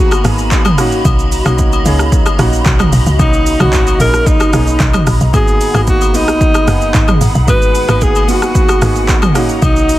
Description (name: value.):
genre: amapiano.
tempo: 112 BPM.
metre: 4/4.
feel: straight.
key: G# minor.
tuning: A4 = 445 Hz.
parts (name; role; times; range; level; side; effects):
breathy alto saxophone; melody; 0.0-10.0 s; D#4 to B4; -16 LUFS; equal; tape echo.
warm baby grand piano; accompaniment; 0.0-10.0 s; G#3 to G#4; -19 LUFS; right 1 dB; none.
hollow soft pad; sustained chords; 0.0-10.0 s; F#4 to B5; -22 LUFS; equal; ensemble chorus, sidechain pumping.
woody log drum bass; bass; 0.0-10.0 s; F#1 to C#2; -14 LUFS; equal; none.
deep house drum kit; drums; 0.1-10.0 s; handclaps, hi-hat, kick drum, rim click, shaker, toms; -13 LUFS; equal; overdrive.
agogo bells; percussion; 0.1-9.8 s; none; -23 LUFS; left 7 dB; none.
room: little or no reverb.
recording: dense, heavily limited modern master.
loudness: -9 LUFS.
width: side -15 dB against mid.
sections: 0.0-10.0 A section.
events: none.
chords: 0.0 G#m9; 0.8 Bmaj7; 5.3 G#m9; 9.4 Bmaj7.